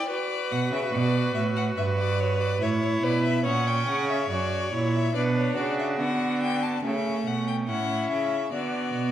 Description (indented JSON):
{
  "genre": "classical, baroque-style fugue for string quartet",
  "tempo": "71 BPM",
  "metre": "4/4",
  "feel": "straight",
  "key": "unclear",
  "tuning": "A4 = 443 Hz",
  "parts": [
    { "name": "rich violin", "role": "melody", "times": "0.0-9.1 s", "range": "C#5 to A5", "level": "-31 LUFS", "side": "left 8 dB", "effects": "none" },
    { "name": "rich violin", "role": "second line", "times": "0.0-9.1 s", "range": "C#4 to C#5", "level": "-30 LUFS", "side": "left 1 dB", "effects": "none" },
    { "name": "rich viola", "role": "accompaniment", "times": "0.0-9.1 s", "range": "A3 to F#4", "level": "-29 LUFS", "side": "right 2 dB", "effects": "none" },
    { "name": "bright cello", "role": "bass", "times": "0.5-9.1 s", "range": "F#2 to D3", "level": "-27 LUFS", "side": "right 3 dB", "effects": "none" }
  ],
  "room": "wet recital hall reverb, RT60 1.3 s",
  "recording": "none",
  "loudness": "-23 LUFS",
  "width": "side -11 dB against mid",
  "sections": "0.0-6.8 A section; 6.8-9.1 B section",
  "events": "none",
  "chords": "0.1 Bm; 1.8 Em/G; 3.5 F#7/A#; 5.2 Bm; 6.8 A; 8.5 D"
}